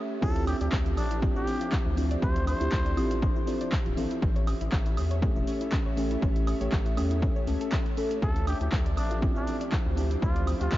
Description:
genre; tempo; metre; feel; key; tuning
deep house; 120 BPM; 4/4; swing 55% on 16ths; D minor; A4 = 441 Hz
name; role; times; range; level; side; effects
warbly tape-like pad; sustained chords; 0.0-10.8 s; F3 to E5; -39 LUFS; equal; chorus, built-in reverb, sidechain pumping
mellow FM electric piano; stabs; 0.0-10.8 s; A3 to E5; -33 LUFS; equal; chorus, phaser, sidechain pumping, low-pass filter, analog delay
airy breathy pad; texture; 0.0-10.8 s; D4 to E5; -40 LUFS; left 1 dB; chorus, sidechain pumping
trumpet with cup mute; melody; 0.2-3.2, 8.2-10.8 s; D4 to C5; -37 LUFS; equal; vintage 12-bit sampler grit, analog delay
soft round pluck; arpeggios; 0.2-10.8 s; C4 to D5; -39 LUFS; left 1 dB; chorus, sidechain pumping, analog delay
round analog bass; bass; 0.2-10.8 s; D1 to E2; -30 LUFS; equal; sidechain pumping
electronic kick drum; drums; 0.2-10.8 s; none; -28 LUFS; equal; overdrive
punchy analog drum machine; drums; 0.2-10.8 s; crash cymbal, handclaps, hi-hat, shaker, woodblock; -39 LUFS; right 1 dB; overdrive
room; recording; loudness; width
light reverb; cassette tape, nothing above 7.5 kHz; -25 LUFS; side -15 dB against mid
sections
0.2-10.8 A section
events
drop 0.2-10.8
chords
0.2 Dm11; 4.2 A7; 8.2 Dm11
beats
| 0.22 0.72 1.22 1.72 | 2.22 2.72 3.22 3.72 | 4.22 4.72 5.22 5.72 | 6.22 6.72 7.22 7.72 | 8.22 8.72 9.22 9.72 | 10.22 10.72

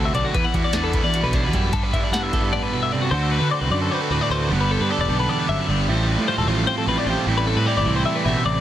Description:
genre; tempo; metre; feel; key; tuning
math rock and midwest emo; 304 BPM (eighths); 7/8; straight; G major; A4 = 440 Hz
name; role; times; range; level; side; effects
twelve-string electric guitar; accompaniment; 0.0-8.6 s; E2 to C5; -24 LUFS; right 4 dB; none
twelve-string electric guitar; arpeggios; 0.0-8.6 s; F#4 to F#5; -24 LUFS; left 5 dB; phaser, tape echo
overdriven electric guitar; riff; 0.0-8.6 s; G2 to G4; -26 LUFS; equal; none
fuzz picked electric bass; bass; 0.0-8.6 s; E1 to D3; -24 LUFS; equal; overdrive
booming analog drum machine; drums; 0.1-2.4 s; hi-hat, kick drum, snare drum; -24 LUFS; equal; none
room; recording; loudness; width
light reverb; dense, heavily limited modern master; -18 LUFS; side -12 dB against mid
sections
0.0-3.1 A section; 3.1-8.6 B section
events
none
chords
0.4 Em9; 1.7 G6; 3.1 D6; 4.5 G69; 5.9 Fadd9; 7.3 Am9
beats
0.15 | 0.35 0.55 0.75 0.95 1.15 1.34 1.54 | 1.74 1.94 2.13 2.33 2.53 2.73 2.93 | 3.12 3.32 3.52 3.72 3.91 4.11 4.31 | 4.51 4.70 4.90 5.10 5.30 5.49 5.69 | 5.89 6.08 6.28 6.48 6.68 6.88 7.07 | 7.27 7.47 7.67 7.86 8.06 8.26 8.46

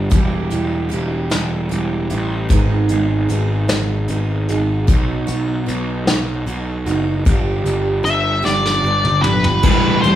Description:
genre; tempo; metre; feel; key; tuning
quiet-loud alternative rock; 50 BPM (dotted quarters); 6/8; straight; E minor; A4 = 440 Hz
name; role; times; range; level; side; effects
picked steel-string acoustic guitar; arpeggios; 0.0-10.2 s; E2 to G#4; -22 LUFS; right 4 dB; none
fuzz picked electric bass; bass; 0.0-10.2 s; E1 to B1; -20 LUFS; equal; overdrive
vintage brush drum kit; drums; 0.1-10.2 s; crash cymbal, hi-hat, kick drum, snare drum, toms; -18 LUFS; left 1 dB; none
octave-fuzz lead guitar; melody; 8.0-10.2 s; B4 to E5; -17 LUFS; left 1 dB; distortion
thick fuzz guitar; riff; 9.6-10.2 s; E3 to B3; -15 LUFS; left 1 dB; distortion
room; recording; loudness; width
moderate large studio reverb, RT60 0.9 s; band playing live in one room; -15 LUFS; side -12 dB against mid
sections
0.0-9.6 A section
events
drum fill 8.5-9.6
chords
0.1 Em; 2.5 G#m; 4.9 B; 7.3 G; 9.6 Em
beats
| 0.12 1.31 | 2.50 3.69 | 4.88 6.07 | 7.26 8.45 | 9.64

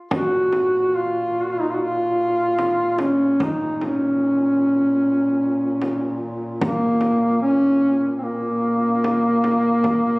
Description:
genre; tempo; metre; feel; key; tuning
caucasian folk, Caucasian lament; 74 BPM; 4/4; rubato; Bb minor; A4 = 440 Hz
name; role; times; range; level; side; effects
mellow duduk; melody; 0.1-10.2 s; Bb3 to Gb4; -18 LUFS; equal; none
dark duduk; drone; 0.1-10.2 s; Bb2; -31 LUFS; equal; none
frame drum; percussion; 0.1-10.0 s; none; -28 LUFS; equal; none
room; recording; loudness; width
moderate cathedral reverb, RT60 4.7 s; recorded on a phone in the room, club reverb, compression; -18 LUFS; side -27 dB against mid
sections
0.0-10.2 A section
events
none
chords
none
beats
| 0.11 0.95 1.78 2.60 | 3.41 4.23 5.03 5.83 | 6.62 7.43 8.24 9.04 | 9.85

